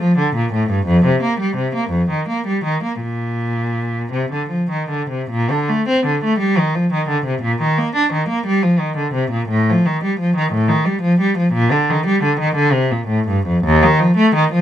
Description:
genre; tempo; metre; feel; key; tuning
classical, baroque-style suite movement for unaccompanied cello; 48-60 BPM (dotted quarters); 6/8; rubato; Bb major; A4 = 440 Hz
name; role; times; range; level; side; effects
rich cello; solo; 0.0-14.6 s; Eb2 to D4; -15 LUFS; equal; none
room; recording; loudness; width
light reverb; close, detailed microphones; -15 LUFS; side -10 dB against mid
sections
0.0-5.3 A section; 5.3-14.6 B section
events
none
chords
none

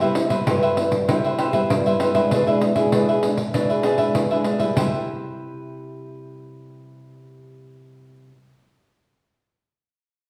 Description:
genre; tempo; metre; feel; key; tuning
samba and choro; 98 BPM; 4/4; straight; C major; A4 = 440 Hz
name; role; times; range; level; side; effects
cavaquinho; accompaniment; 0.0-8.3 s; D4 to E5; -25 LUFS; equal; none
nylon-string guitar; accompaniment; 0.0-8.4 s; G2 to E4; -26 LUFS; equal; none
pandeiro; percussion; 0.0-4.9 s; none; -26 LUFS; equal; none
room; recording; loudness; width
wet recital hall reverb, RT60 1.4 s; recorded in a church or concert hall, small room ambience; -20 LUFS; mono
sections
0.0-4.8 A section; 4.8-7.2 B section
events
none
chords
0.0 Cmaj7; 2.3 E7/B; 4.8 Cmaj7

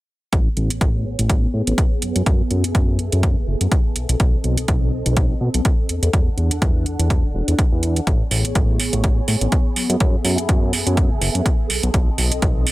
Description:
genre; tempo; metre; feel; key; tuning
filtered disco house; 124 BPM; 4/4; swing 56% on 16ths; A major; A4 = 439 Hz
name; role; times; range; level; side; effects
phased string machine; sustained chords; 0.7-12.7 s; B3 to F#5; -27 LUFS; equal; ensemble chorus, phaser, sidechain pumping, low-pass filter
fat analog bass; bass; 0.3-12.7 s; E1 to B2; -20 LUFS; equal; sidechain pumping, low-pass filter
electronic hi-hat; drums; 0.3-12.7 s; none; -24 LUFS; right 3 dB; sidechain pumping on hats
electronic kick drum; drums; 0.3-12.5 s; none; -18 LUFS; equal; none
room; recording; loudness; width
little or no reverb; none; -16 LUFS; side -18 dB against mid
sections
0.3-12.7 A section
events
filter sweep 0.3-12.7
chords
0.3 Amaj9; 2.0 F#m11; 4.0 B7b9; 5.9 E9sus4; 8.1 Amaj9; 9.8 F#m11; 11.7 B7b9

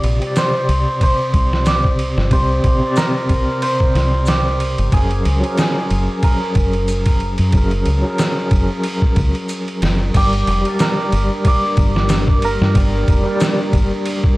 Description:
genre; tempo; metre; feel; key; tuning
trip hop; 92 BPM; 4/4; swing 56% on 16ths; unclear; A4 = 439 Hz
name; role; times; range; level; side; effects
cimbalom; melody; 0.0-14.4 s; G4 to D5; -22 LUFS; right 1 dB; tape echo
overdriven tine electric piano; accompaniment; 0.0-14.4 s; C3 to D5; -21 LUFS; equal; fast tremolo, tape echo
deep dub fingered electric bass; bass; 0.0-13.9 s; F1 to G2; -18 LUFS; equal; none
trip hop sampler-style drum kit; drums; 0.0-14.4 s; crash cymbal, kick drum, ride cymbal, snare drum; -18 LUFS; equal; small room ambience
maracas; percussion; 0.4-13.5 s; none; -35 LUFS; left 3 dB; none
dark analog pad; sustained chords; 10.5-14.4 s; G3 to Bb4; -25 LUFS; right 2 dB; chorus, vintage 12-bit sampler grit
room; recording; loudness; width
digital ambience; dry, gritty hardware recording, transformer saturation, vinyl crackle; -14 LUFS; side -20 dB against mid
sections
0.0-10.1 A section; 10.1-14.4 B section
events
none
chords
0.0 Csus2; 4.9 F#add9; 10.1 Gm

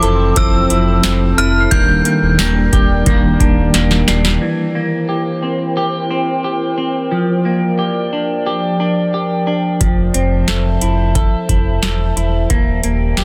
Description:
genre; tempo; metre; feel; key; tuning
dream pop; 89 BPM; 4/4; straight; F major; A4 = 444 Hz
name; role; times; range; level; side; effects
synth chime; melody; 0.0-3.7 s; D6 to G6; -21 LUFS; equal; ensemble chorus, tape echo
semi-hollow electric guitar; accompaniment; 0.0-4.9 s; Eb3 to Bb4; -20 LUFS; equal; harmonic tremolo, lush chorus
warbly tape-like pad; sustained chords; 0.0-13.2 s; Eb3 to Bb5; -24 LUFS; equal; chorus, built-in reverb
semi-hollow electric guitar; arpeggios; 0.0-13.2 s; E3 to A4; -21 LUFS; equal; lush chorus, tape echo
sub bass with octave; bass; 0.0-4.4, 9.8-13.2 s; Eb1 to F1; -19 LUFS; equal; none
booming analog drum machine; drums; 0.0-4.4, 9.8-13.2 s; hi-hat, kick drum, snare drum, tambourine; -18 LUFS; equal; none
celesta; texture; 1.4-4.7 s; A6 to C7; -34 LUFS; equal; none
room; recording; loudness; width
light reverb; dense, heavily limited modern master; -15 LUFS; mono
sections
0.0-4.4 A section; 4.4-13.2 B section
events
drum fill 3.7-4.4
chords
0.0 Fmaj7; 1.7 Ebmaj7; 4.4 C7; 7.1 Bb6; 9.8 Fmaj7; 12.5 Ebmaj7

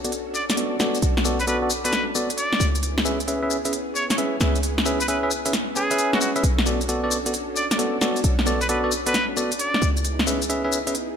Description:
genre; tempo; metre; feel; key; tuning
UK garage, two-step garage; 133 BPM; 4/4; swing 66% on 16ths; B dorian; A4 = 440 Hz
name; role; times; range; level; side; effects
soft string machine; sustained chords; 0.0-11.2 s; B3 to A4; -31 LUFS; right 1 dB; ensemble chorus
bell-like tine electric piano; stabs; 0.0-10.9 s; B3 to G#5; -25 LUFS; equal; low-pass filter, ping-pong delay
short 808-style bass; bass; 0.0-11.2 s; B1 to C#2; -25 LUFS; equal; none
garage drum kit; drums; 0.0-11.1 s; hi-hat, shaker, snare drum; -24 LUFS; left 1 dB; none
trumpet with straight mute; melody; 0.3-9.9 s; F#4 to D5; -27 LUFS; equal; ping-pong delay
room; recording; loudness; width
light reverb, digital ambience; none; -20 LUFS; side -7 dB against mid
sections
0.0-11.2 A section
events
filter sweep on tine electric piano 0.0-11.2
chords
0.0 Bm7; 2.6 C#m7; 6.4 Bm7; 9.8 C#m7

